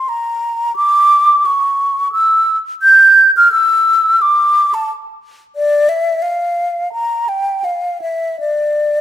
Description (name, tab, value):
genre	classical, baroque-style fantasia for unaccompanied flute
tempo	87 BPM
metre	4/4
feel	rubato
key	D minor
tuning	A4 = 440 Hz
part	mellow hollow concert flute	solo	0.0-9.0 s	D5 to G6	-10 LUFS	equal	none
room	light reverb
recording	close, detailed microphones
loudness	-10 LUFS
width	side -11 dB against mid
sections	0.0-9.0 A section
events	none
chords	none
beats	| 0.09 0.77 1.45 2.12 | 2.82 3.52 4.21 4.89 | 5.56 6.24 6.93 7.65 | 8.41